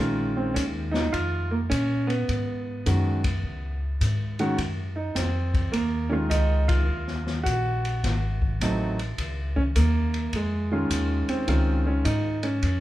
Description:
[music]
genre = jazz piano trio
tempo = 104 BPM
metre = 4/4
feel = swing 67% on 8ths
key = Db major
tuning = A4 = 441 Hz
[part]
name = warm baby grand piano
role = melody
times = 0.0-12.8 s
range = Eb3 to Gb4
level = -27 LUFS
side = right 1 dB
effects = none
[part]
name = upright bass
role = bass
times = 0.0-12.8 s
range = Ab1 to Bb2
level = -26 LUFS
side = equal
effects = none
[part]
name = open jazz drum kit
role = drums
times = 0.6-12.8 s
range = hi-hat, kick drum, ride cymbal, snare drum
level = -31 LUFS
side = left 1 dB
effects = none
[sound]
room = light reverb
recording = band playing live in one room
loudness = -23 LUFS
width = side -15 dB against mid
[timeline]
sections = 0.0-12.8 A section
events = band accent 6.6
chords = 0.0 Bbm7; 2.3 Abm7; 3.4 Db5; 4.6 Gbsus2; 6.9 Ebmadd9; 8.0 Ab7b9; 9.2 Dbadd9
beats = 0.55 1.13 1.70 | 2.28 2.85 3.43 4.01 | 4.58 5.16 5.73 6.31 | 6.88 7.46 8.03 8.61 | 9.18 9.76 10.33 10.90 | 11.48 12.05 12.63

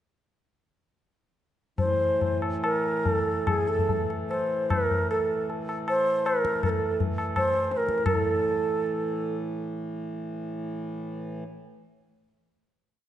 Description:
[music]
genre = indian classical, Hindustani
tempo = 140-201 BPM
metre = 4/4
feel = straight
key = unclear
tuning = A4 = 439 Hz
[part]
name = bansuri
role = melody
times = 1.8-9.4 s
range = G#4 to C5+24c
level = -26 LUFS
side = right 1 dB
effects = none
[part]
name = pedal harmonium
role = drone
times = 1.8-11.4 s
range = A2 to E3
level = -33 LUFS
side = right 1 dB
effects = none
[part]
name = tabla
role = percussion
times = 1.8-8.2 s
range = none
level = -29 LUFS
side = left 2 dB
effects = none
[sound]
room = wet scoring stage reverb, RT60 1.6 s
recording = nothing above 10.9 kHz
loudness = -24 LUFS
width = side -11 dB against mid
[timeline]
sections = 1.8-8.1 theme; 8.1-10.6 final chord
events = speeding up 1.8-10.6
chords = none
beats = | 1.78 2.21 2.64 3.06 | 3.48 3.89 4.30 4.71 | 5.10 5.50 5.88 6.26 | 6.64 7.01 7.37 7.72 | 8.07 8.41 8.75 9.08 | 9.41 9.73 10.04 10.35

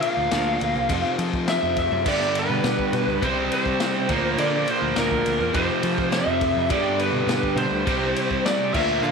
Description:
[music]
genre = classic rock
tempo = 103 BPM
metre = 4/4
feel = straight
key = unclear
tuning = A4 = 440 Hz
[part]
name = lead guitar through a small cranked amp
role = melody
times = 0.0-9.1 s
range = Bb4 to F5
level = -24 LUFS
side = left 1 dB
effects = overdrive, slapback echo
[part]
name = picked twelve-string acoustic guitar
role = accompaniment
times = 0.0-9.1 s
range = F2 to G4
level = -34 LUFS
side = right 12 dB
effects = analog chorus
[part]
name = tonewheel organ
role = sustained chords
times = 0.0-9.1 s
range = G3 to C5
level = -36 LUFS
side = right 2 dB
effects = none
[part]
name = distorted electric guitar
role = riff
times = 0.0-9.1 s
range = F2 to C4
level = -27 LUFS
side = left 9 dB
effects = distortion
[part]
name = vintage drum kit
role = drums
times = 0.0-8.9 s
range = crash cymbal, kick drum, ride cymbal, snare drum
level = -29 LUFS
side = left 3 dB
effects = none
[part]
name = modern bright fingered electric bass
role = bass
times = 0.2-9.1 s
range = C2 to F3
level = -28 LUFS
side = right 1 dB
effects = none
[part]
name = distorted electric guitar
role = riff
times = 2.1-9.1 s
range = F2 to C4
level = -26 LUFS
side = right 12 dB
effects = distortion
[sound]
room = light reverb, small room ambience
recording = 1960s-style stereo with parts hard left and right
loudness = -20 LUFS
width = side -5 dB against mid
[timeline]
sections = 0.0-9.1 A section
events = none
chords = 0.0 Bbadd9/D; 0.9 F; 2.1 G; 3.2 C; 4.1 Bbadd9/D; 5.6 F; 6.7 G; 7.9 C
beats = 0.32 0.90 1.48 | 2.06 2.65 3.23 3.81 | 4.39 4.97 5.55 6.13 | 6.71 7.30 7.88 8.46 | 9.04

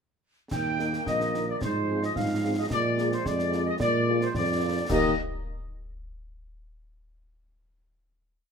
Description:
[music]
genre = military-style march for wind band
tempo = 109 BPM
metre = 2/4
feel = straight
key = Eb major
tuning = A4 = 440 Hz
[part]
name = mellow trumpet section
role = melody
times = 0.5-5.1 s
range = C5 to G5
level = -31 LUFS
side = left 2 dB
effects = none
[part]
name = flute section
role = second line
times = 0.5-5.2 s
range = C5 to G5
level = -32 LUFS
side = equal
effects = none
[part]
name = bright trombone section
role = sustained chords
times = 0.5-5.1 s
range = Eb3 to Bb3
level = -36 LUFS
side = right 1 dB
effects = none
[part]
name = warm tuba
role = bass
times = 0.5-5.1 s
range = Bb1 to Bb2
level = -28 LUFS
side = right 2 dB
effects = none
[part]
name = concert snare drum, clash cymbals and concert bass drum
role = drums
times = 0.5-5.2 s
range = none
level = -35 LUFS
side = left 1 dB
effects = none
[part]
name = mellow French horn section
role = accompaniment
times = 0.8-5.1 s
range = Bb3 to Bb4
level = -32 LUFS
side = left 3 dB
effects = none
[sound]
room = moderate large studio reverb, RT60 1.1 s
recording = minimal, uncompressed stereo recording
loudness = -24 LUFS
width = side -6 dB against mid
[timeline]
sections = 0.5-4.9 A section; 4.9-6.0 final chord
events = none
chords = 0.5 Eb; 1.6 Fm/Ab; 2.7 Bb7; 4.9 Eb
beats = | 0.52 1.06 | 1.61 2.16 | 2.71 3.26 | 3.81 4.36 | 4.91

